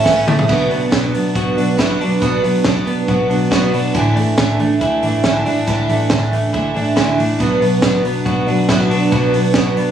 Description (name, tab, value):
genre	jangly indie pop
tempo	139 BPM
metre	4/4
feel	straight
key	unclear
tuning	A4 = 439 Hz
part	picked twelve-string acoustic guitar	accompaniment	0.0-9.9 s	A2 to E4	-16 LUFS	right 4 dB	none
part	direct-recorded clean electric guitar	arpeggios	0.0-9.9 s	A2 to A4	-21 LUFS	left 4 dB	ping-pong delay
part	vintage muted picked electric bass	bass	0.1-9.9 s	A1 to B1	-21 LUFS	left 2 dB	none
part	compact cocktail drum kit	drums	0.1-9.9 s	crash cymbal, hi-hat, kick drum, snare drum, toms	-20 LUFS	equal	none
room	light reverb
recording	recorded on a phone in the room, studio ambience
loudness	-13 LUFS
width	side -9 dB against mid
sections	0.5-9.9 A section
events	drum fill 0.1-0.5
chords	0.5 Bm; 3.9 Asus4; 7.4 Bm